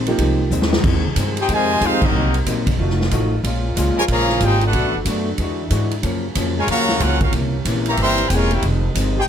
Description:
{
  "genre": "jazz, big band swing",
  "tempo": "185 BPM",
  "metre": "4/4",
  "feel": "swing 63% on 8ths",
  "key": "F minor",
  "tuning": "A4 = 440 Hz",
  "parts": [
    { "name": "vintage hollow-body jazz guitar", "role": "accompaniment", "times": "0.0-9.2 s", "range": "F2 to Gb4", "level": "-24 LUFS", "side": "left 3 dB", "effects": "none" },
    { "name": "upright bass", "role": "bass", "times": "0.0-9.3 s", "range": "E1 to G#2", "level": "-21 LUFS", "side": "equal", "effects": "none" },
    { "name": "bright upright piano", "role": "accompaniment", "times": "0.1-0.5 s", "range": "F3 to G4", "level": "-20 LUFS", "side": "right 3 dB", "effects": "none" },
    { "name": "swinging big-band drum kit", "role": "drums", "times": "0.1-9.1 s", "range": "crash cymbal, hi-hat, kick drum, ride cymbal, snare drum", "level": "-23 LUFS", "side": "equal", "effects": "none" },
    { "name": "warm saxophone section", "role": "sustained chords", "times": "0.8-9.3 s", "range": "C3 to Eb5", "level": "-29 LUFS", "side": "equal", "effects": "none" },
    { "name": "brilliant trumpet section", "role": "melody", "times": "1.4-9.2 s", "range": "C4 to C6", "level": "-19 LUFS", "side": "left 1 dB", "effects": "none" },
    { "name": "warm trombone section", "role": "second line", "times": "1.4-9.2 s", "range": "C3 to G4", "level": "-23 LUFS", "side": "equal", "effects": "none" }
  ],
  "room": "light reverb",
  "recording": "close, detailed microphones",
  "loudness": "-16 LUFS",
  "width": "side -9 dB against mid",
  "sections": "0.8-9.3 A section",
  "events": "drum fill 0.5-0.8; band accent 2.0",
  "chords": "0.0 Fm7; 2.1 Cm7b5; 2.8 F7b9; 3.4 Bbm7; 4.7 Bm7; 5.4 E9; 6.0 Gbmaj7; 7.3 C7b9; 8.6 Fm7",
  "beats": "0.20 0.52 | 0.84 1.17 1.49 1.82 | 2.14 2.47 2.79 3.12 | 3.44 3.76 4.09 4.41 | 4.74 5.06 5.39 5.71 | 6.04 6.36 6.68 7.01 | 7.33 7.66 7.98 8.30 | 8.63 8.95 9.28"
}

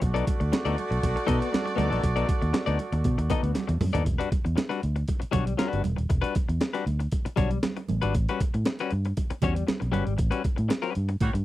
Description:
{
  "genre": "funk",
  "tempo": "118 BPM",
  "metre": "4/4",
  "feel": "straight",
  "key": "E dorian",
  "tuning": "A4 = 439 Hz",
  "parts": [
    { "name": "warm horn section", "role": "second line", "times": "0.0-3.8, 11.2-11.3 s", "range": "G3 to D5", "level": "-31 LUFS", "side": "right 2 dB", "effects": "none" },
    { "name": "clean electric guitar", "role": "accompaniment", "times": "0.0-11.4 s", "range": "G3 to D#5", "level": "-30 LUFS", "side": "left 6 dB", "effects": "none" },
    { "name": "vintage muted fingered electric bass", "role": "bass", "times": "0.0-11.4 s", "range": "D#1 to B2", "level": "-27 LUFS", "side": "equal", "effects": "none" },
    { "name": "breakbeat sampler-style drum kit", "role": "drums", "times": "0.0-11.4 s", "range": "hi-hat, kick drum, snare drum, toms", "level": "-28 LUFS", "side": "equal", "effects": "none" },
    { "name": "congas", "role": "percussion", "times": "0.3-11.3 s", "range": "none", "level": "-34 LUFS", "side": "right 6 dB", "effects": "none" }
  ],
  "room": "little or no reverb",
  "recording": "dry, close 1970s-style studio recording",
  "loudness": "-24 LUFS",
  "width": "side -15 dB against mid",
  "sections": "0.0-4.1 A section; 4.1-11.4 B section",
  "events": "drum fill 3.6-4.1; band accent 10.2-11.4",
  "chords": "0.0 B7#9; 4.1 Em9; 8.1 A13",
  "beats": "| 0.02 0.53 1.03 1.53 | 2.04 2.54 3.05 3.56 | 4.06 4.57 5.08 5.59 | 6.10 6.61 7.12 7.63 | 8.14 8.65 9.17 9.68 | 10.19 10.70 11.21"
}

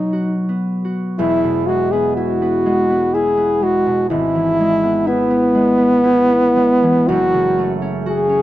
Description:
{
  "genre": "classical, romantic duo for French horn and harp",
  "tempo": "55-64 BPM",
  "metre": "3/4",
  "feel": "rubato",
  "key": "E major",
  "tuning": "A4 = 440 Hz",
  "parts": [
    { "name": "clear French horn", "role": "melody", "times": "0.0-8.4 s", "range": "B3 to G#4", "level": "-15 LUFS", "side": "equal", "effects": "none" },
    { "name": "concert harp", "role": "accompaniment", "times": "0.0-8.4 s", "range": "E1 to F#4", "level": "-19 LUFS", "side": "equal", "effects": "none" }
  ],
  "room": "light reverb",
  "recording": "close, detailed microphones",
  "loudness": "-14 LUFS",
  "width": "side -14 dB against mid",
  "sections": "0.0-1.2 A section; 1.2-8.4 A section",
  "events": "none",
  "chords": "0.0 B; 1.2 E; 4.1 E/G#; 7.1 F#m",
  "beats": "0.12 | 1.18 2.17 3.14 | 4.11 5.08 6.05 | 7.10 8.07"
}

